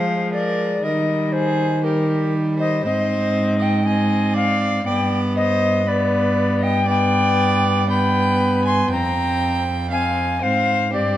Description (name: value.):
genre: classical, renaissance-style consort dance.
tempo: 119 BPM.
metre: 4/4.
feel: straight.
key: unclear.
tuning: A4 = 441 Hz.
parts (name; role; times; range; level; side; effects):
mellow alto recorder; melody; 0.0-11.2 s; Bb4 to C6; -22 LUFS; left 4 dB; none.
warm violin; second line; 0.0-11.2 s; G4 to Ab5; -25 LUFS; right 4 dB; none.
rich viola; accompaniment; 0.0-11.2 s; G3 to C4; -24 LUFS; left 1 dB; none.
rich cello; bass; 0.0-11.2 s; F2 to F3; -21 LUFS; right 1 dB; none.
room: moderate recital hall reverb, RT60 1.4 s.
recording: dark, warm production.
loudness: -17 LUFS.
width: side -13 dB against mid.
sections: 0.0-11.2 A section.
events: none.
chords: 0.0 Fm; 0.8 Eb; 2.9 Ab; 4.9 G; 8.9 Fm.